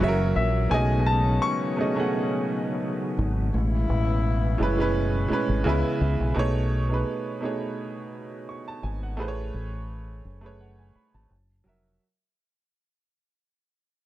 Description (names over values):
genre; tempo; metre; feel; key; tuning
R&B; 85 BPM; 4/4; swing 54% on 16ths; unclear; A4 = 440 Hz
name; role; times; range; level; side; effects
warm grand piano; melody; 0.0-5.6 s; E5 to C#6; -28 LUFS; left 3 dB; plate reverb
bright upright piano; accompaniment; 0.0-12.0 s; A2 to C#6; -28 LUFS; right 3 dB; plate reverb
tonewheel organ; sustained chords; 0.0-6.3 s; B2 to F#4; -31 LUFS; equal; slow rotary speaker, chorus vibrato
mellow horn section; stabs; 0.0-6.0 s; C#3 to F#4; -32 LUFS; left 5 dB; plate reverb
deep dub fingered electric bass; bass; 0.0-12.0 s; E#1 to C#2; -25 LUFS; equal; none
room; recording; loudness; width
light reverb; dark, warm production; -23 LUFS; side -14 dB against mid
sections
0.0-6.4 A section; 6.4-12.0 B section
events
upright piano fill 5.3-6.4; fade-out 6.4-12.0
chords
0.0 F#7; 0.7 B13; 3.5 Amaj9; 5.7 C#m7; 6.4 B13; 9.2 Amaj9; 11.3 F#7